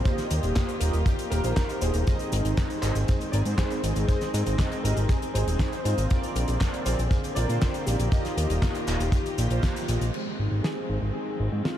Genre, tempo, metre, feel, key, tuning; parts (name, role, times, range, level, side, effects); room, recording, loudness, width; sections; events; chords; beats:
italo disco; 119 BPM; 4/4; straight; A4 = 440 Hz
clear concert grand piano; melody; 0.0-11.8 s; Eb4 to D5; -34 LUFS; left 1 dB; ensemble chorus, ping-pong delay
rich chamber string section; sustained chords; 0.0-11.8 s; D3 to G4; -34 LUFS; left 1 dB
mellow synth brass; stabs; 0.0-11.8 s; Ab3 to Ab5; -34 LUFS; right 3 dB; chorus, phaser, ping-pong delay
fat analog bass; bass; 0.0-11.6 s; Eb1 to Bb2; -26 LUFS; equal
damped 70s drum kit; drums; 0.1-11.8 s; cabasa, crash cymbal, handclaps, hi-hat, snare drum; -33 LUFS; left 1 dB; studio reverb
kick drum; drums; 0.1-9.7 s; -24 LUFS; equal; studio reverb
moderate huge ambient reverb, RT60 9.3 s; dreamy mix soaked in reverb; -23 LUFS; side -11 dB against mid
0.0-10.1 A section; 10.1-11.8 B section
band accent 9.6
0.1 Ebadd9; 6.1 Bbadd9; 8.1 Ebadd9; 10.1 Ab
| 0.05 0.56 1.06 1.57 | 2.07 2.58 3.08 3.58 | 4.09 4.59 5.10 5.60 | 6.11 6.61 7.11 7.62 | 8.12 8.63 9.13 9.63 | 10.14 10.64 11.15 11.65